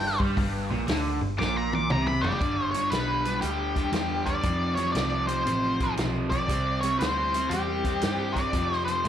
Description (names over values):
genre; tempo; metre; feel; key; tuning
blues rock power trio and southern rock; 118 BPM; 4/4; swing 66% on 8ths; G mixolydian; A4 = 441 Hz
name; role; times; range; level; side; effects
octave-fuzz lead guitar; melody; 0.0-9.1 s; G4 to D6; -28 LUFS; left 1 dB; distortion, slapback echo
crunchy overdriven guitar; riff; 0.0-9.1 s; F2 to C4; -29 LUFS; equal; slapback echo
vintage muted picked electric bass; bass; 0.0-9.1 s; F1 to A2; -31 LUFS; equal; none
vintage drum kit; drums; 0.2-9.1 s; hi-hat, kick drum, snare drum, toms; -31 LUFS; equal; none
room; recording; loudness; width
light reverb, studio reverb; live gig heard through the venue's PA, club reverb; -24 LUFS; side -10 dB against mid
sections
0.0-2.4 A section; 2.4-9.1 B section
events
lead electric guitar solo 0.0-2.4; drum fill 1.4-2.4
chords
0.0 G5; 2.4 G; 4.4 F; 6.5 C; 8.5 F5